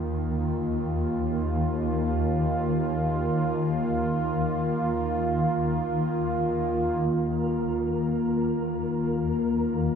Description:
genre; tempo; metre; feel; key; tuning
dark ambient drone; free time; none; none; unclear; A4 = 442 Hz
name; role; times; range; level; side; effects
sweeping resonant pad; sustained chords; 0.0-10.0 s; Eb3 to F4; -26 LUFS; equal; chorus
swarming drone; drone; 0.0-10.0 s; Eb2 to Eb3; -28 LUFS; equal; built-in reverb
flickering grainy texture; texture; 7.2-10.0 s; Bb4; -36 LUFS; right 1 dB; built-in reverb
room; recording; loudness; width
wet cathedral reverb, RT60 4.8 s; none; -24 LUFS; side -7 dB against mid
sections
0.0-7.1 A section; 7.1-10.0 A section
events
none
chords
0.0 Eb5

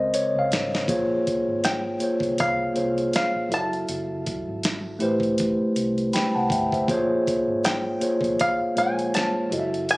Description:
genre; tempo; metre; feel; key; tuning
R&B, neo-soul; 80 BPM; 4/4; swing 57% on 16ths; unclear; A4 = 440 Hz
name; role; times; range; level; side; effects
mellow tine electric piano; accompaniment; 0.0-10.0 s; Db3 to B5; -23 LUFS; equal; none
vintage muted fingered electric bass; bass; 0.0-10.0 s; Gb1 to Db2; -36 LUFS; equal; none
boom bap sampler-style drum kit; drums; 0.1-10.0 s; hi-hat, kick drum, snare drum; -28 LUFS; equal; none
bluegrass banjo; melody; 1.6-10.0 s; F5 to A5; -25 LUFS; equal; none
room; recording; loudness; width
light reverb; recorded on a phone in the room, club reverb; -21 LUFS; side -22 dB against mid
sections
0.9-10.0 A section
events
drum fill 0.0-0.9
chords
0.0 Bbm9; 3.5 Gbm9; 5.0 Am9; 6.9 Bbm9

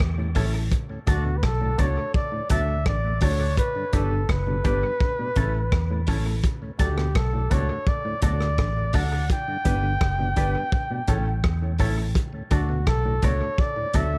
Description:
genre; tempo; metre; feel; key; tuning
roots reggae; 84 BPM; 4/4; straight; D major; A4 = 438 Hz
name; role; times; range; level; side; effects
vintage muted fingered electric bass; bass; 0.0-14.2 s; F#1 to E2; -27 LUFS; equal; none
crunchy breakbeat drum kit; drums; 0.0-14.1 s; hi-hat, kick drum, rim click; -27 LUFS; equal; none
mellow tonewheel organ; accompaniment; 0.2-14.2 s; D2 to D4; -39 LUFS; equal; none
muted clav; arpeggios; 0.2-14.1 s; A2 to E3; -38 LUFS; equal; none
electric guitar with an envelope filter; accompaniment; 0.3-14.1 s; C#4 to D5; -39 LUFS; equal; analog delay
clear grand piano; stabs; 0.4-14.1 s; A3 to B4; -37 LUFS; equal; none
breathy flugelhorn; melody; 1.1-14.2 s; F#4 to G5; -31 LUFS; equal; analog delay
room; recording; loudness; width
light reverb; none; -24 LUFS; mono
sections
0.0-14.2 A section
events
none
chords
0.0 A; 0.7 D; 3.6 G; 5.0 A; 6.4 D; 9.3 G; 10.7 A; 12.2 D

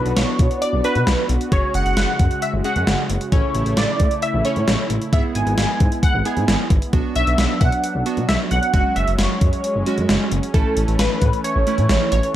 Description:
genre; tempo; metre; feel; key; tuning
synth-pop; 133 BPM; 4/4; straight; A major; A4 = 440 Hz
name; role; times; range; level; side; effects
funky polysynth comp; melody; 0.0-12.4 s; A4 to G#5; -22 LUFS; right 1 dB; chorus
warm analog keys; accompaniment; 0.0-12.1 s; G#3 to B4; -27 LUFS; right 4 dB; chorus
brassy analog pad; sustained chords; 0.0-12.4 s; C#3 to F#4; -26 LUFS; equal; chorus
qanun; arpeggios; 0.0-1.0 s; E4 to E5; -40 LUFS; left 1 dB; none
smooth gliding synth bass; bass; 0.0-12.2 s; F#1 to B2; -21 LUFS; equal; none
gated 80s digital drum machine; drums; 0.1-12.3 s; hi-hat, kick drum, snare drum; -20 LUFS; equal; gated reverb, gated reverb snare, overdrive
room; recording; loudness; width
little or no reverb; dry, gritty hardware recording; -16 LUFS; side -12 dB against mid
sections
0.0-12.4 A section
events
none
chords
0.0 Bm; 1.5 F#sus2; 3.3 A; 5.1 E/G#; 6.9 Bm; 8.7 F#sus2; 10.5 A

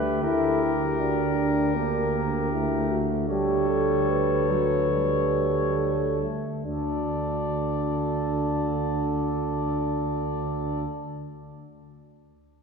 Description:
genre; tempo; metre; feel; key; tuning
classical, brass quintet; 67-80 BPM; 4/4; rubato; D major; A4 = 440 Hz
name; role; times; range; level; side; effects
clear trumpet; melody; 0.0-10.8 s; Bb4 to D5; -31 LUFS; left 7 dB; none
warm flugelhorn; second line; 0.0-10.9 s; G4 to A4; -32 LUFS; right 3 dB; none
clear trombone; accompaniment; 0.0-10.9 s; F#3 to E4; -28 LUFS; right 2 dB; none
warm French horn; accompaniment; 0.0-10.9 s; D4 to B4; -31 LUFS; left 3 dB; none
mellow tuba; bass; 0.0-10.9 s; D2; -29 LUFS; right 2 dB; none
room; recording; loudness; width
wet church reverb, RT60 3.1 s; heard from further back in the room; -23 LUFS; side -5 dB against mid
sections
0.0-6.7 A section; 6.7-10.1 B section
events
slowing down 0.0-6.7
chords
0.2 Gm/D; 3.3 A7/D; 6.7 D

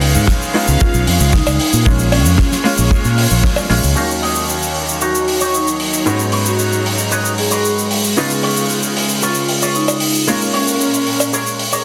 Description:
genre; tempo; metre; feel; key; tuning
nu-disco, nu disco; 114 BPM; 4/4; straight; Eb minor; A4 = 440 Hz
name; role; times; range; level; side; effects
clear grand piano; accompaniment; 0.0-11.8 s; Eb2 to F5; -23 LUFS; equal; analog delay
clear studio string section; sustained chords; 0.0-11.8 s; Bb2 to Bb5; -25 LUFS; equal; sidechain pumping
fingered electric bass; bass; 0.0-3.9 s; Bb1 to Bb2; -16 LUFS; equal; none
damped 70s drum kit; drums; 0.0-11.8 s; hi-hat, shaker, snare drum; -20 LUFS; equal; studio reverb
kick drum; drums; 0.3-3.5 s; none; -17 LUFS; equal; studio reverb, soft clipping on snare
vibraphone with medium mallets; melody; 0.8-11.3 s; Db4 to Ab4; -23 LUFS; equal; analog delay
cowbell; percussion; 1.5-3.7, 9.9-11.3 s; none; -22 LUFS; equal; none
electric guitar with an envelope filter; riff; 4.0-11.8 s; Eb4 to Eb5; -25 LUFS; equal; lush chorus, low-pass filter, analog delay
room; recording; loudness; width
light reverb, small room ambience; dense, heavily limited modern master; -15 LUFS; mono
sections
0.0-4.0 A section; 4.0-11.8 B section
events
band accent 3.4; filter sweep on clean electric guitar 4.0-11.8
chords
0.0 Db7; 1.9 Bbm7; 4.0 Ebm7; 6.1 Abm11; 8.2 Db7; 10.3 Bbm7

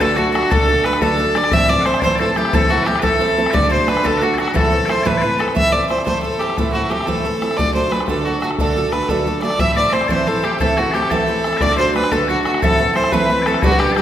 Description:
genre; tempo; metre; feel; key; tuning
celtic folk, Celtic jig; 119 BPM (dotted quarters); 6/8; straight; A dorian; A4 = 444 Hz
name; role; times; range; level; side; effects
clear fiddle; melody; 0.0-14.0 s; F#4 to E5; -18 LUFS; equal; none
loud bright bagpipes; second line; 0.0-5.5, 9.6-14.0 s; F#4 to F#5; -21 LUFS; left 4 dB; none
picked twelve-string acoustic guitar; accompaniment; 0.0-14.0 s; A2 to B4; -20 LUFS; right 2 dB; none
bodhran; percussion; 0.0-14.0 s; none; -22 LUFS; left 1 dB; none
room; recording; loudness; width
wet recital hall reverb, RT60 1.7 s; recorded in a church or concert hall; -14 LUFS; side -10 dB against mid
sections
0.0-5.6 A section; 5.6-13.6 A section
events
none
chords
0.0 D; 1.5 Am; 3.5 D; 4.5 Am; 7.6 D; 9.6 Am; 11.6 D; 12.6 Am

